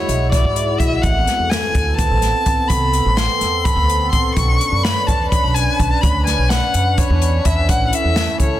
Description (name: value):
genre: progressive instrumental, band music in an uneven meter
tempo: 252 BPM (eighths)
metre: 7/8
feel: straight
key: unclear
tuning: A4 = 439 Hz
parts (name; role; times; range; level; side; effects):
- dark violin; melody; 0.0-8.6 s; C#5 to C#6; -19 LUFS; left 1 dB; ping-pong delay
- upright bass; bass; 0.1-8.6 s; A1 to G#2; -19 LUFS; equal; none
- open jazz drum kit; drums; 0.1-8.5 s; hi-hat, kick drum, snare drum; -20 LUFS; equal; none
room: light reverb, small room reverb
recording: dense, heavily limited modern master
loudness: -14 LUFS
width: side -13 dB against mid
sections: 0.0-8.6 A section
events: none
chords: 0.0 Eadd9; 1.0 Amadd9; 4.4 Bmadd9; 7.7 A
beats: 0.09 0.33 0.56 0.80 | 1.04 1.28 1.51 1.75 1.99 2.23 2.46 | 2.70 2.94 3.18 3.42 3.65 3.89 4.13 | 4.37 4.60 4.84 5.08 5.32 5.55 5.79 | 6.03 6.27 6.50 6.74 6.98 7.22 7.45 | 7.69 7.93 8.16 8.40